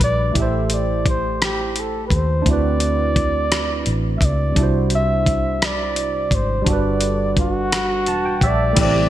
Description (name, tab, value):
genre	slow six-eight R&B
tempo	57 BPM (dotted quarters)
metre	6/8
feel	straight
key	A dorian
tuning	A4 = 440 Hz
part	breathy flugelhorn	melody	0.0-9.1 s	F#4 to E5	-22 LUFS	equal	none
part	barky tine electric piano	accompaniment	0.0-9.1 s	C3 to A5	-23 LUFS	right 3 dB	overdrive, analog chorus
part	vintage muted fingered electric bass	bass	0.0-9.1 s	E1 to D#2	-22 LUFS	equal	none
part	dusty soul sampler-style drum kit	drums	0.0-8.9 s	crash cymbal, hi-hat, kick drum, rim click	-20 LUFS	equal	gated reverb
part	mellow tonewheel organ	sustained chords	8.8-9.1 s	C3 to G4	-28 LUFS	left 2 dB	none
room	light reverb, digital ambience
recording	bright 1980s-style digital production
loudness	-17 LUFS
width	side -12 dB against mid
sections	0.4-8.8 A section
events	tine electric piano fill 7.7-8.8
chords	0.4 Am7; 2.5 D13; 4.6 Cadd9; 6.7 Gmaj9